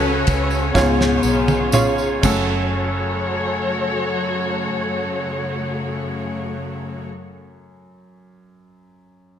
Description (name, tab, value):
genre	pop ballad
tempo	57-64 BPM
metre	4/4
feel	straight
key	F# minor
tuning	A4 = 437 Hz
part	warm studio cello section	second line	0.0-7.0 s	F#2 to C#4	-25 LUFS	left 4 dB	none
part	clear grand piano	accompaniment	0.0-9.4 s	F#2 to C#5	-23 LUFS	right 2 dB	none
part	dark studio string section	sustained chords	0.0-7.1 s	C#3 to C#5	-24 LUFS	left 1 dB	none
part	vintage muted fingered electric bass	bass	0.0-7.0 s	F#1 to C#2	-24 LUFS	right 1 dB	none
part	damped 70s drum kit	drums	0.3-2.5 s	crash cymbal, kick drum, ride cymbal, snare drum, toms	-23 LUFS	right 1 dB	gated reverb
part	tambourine	percussion	0.3-3.2 s	none	-33 LUFS	right 7 dB	none
room	moderate lush hall reverb, RT60 1.9 s, small room ambience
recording	bright 1980s-style digital production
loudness	-18 LUFS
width	side -9 dB against mid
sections	0.0-2.7 A section; 2.7-6.9 B section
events	slowing down 0.0-2.7; drum fill 0.7-2.7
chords	0.0 F#m/C#; 0.7 C#; 2.2 F#m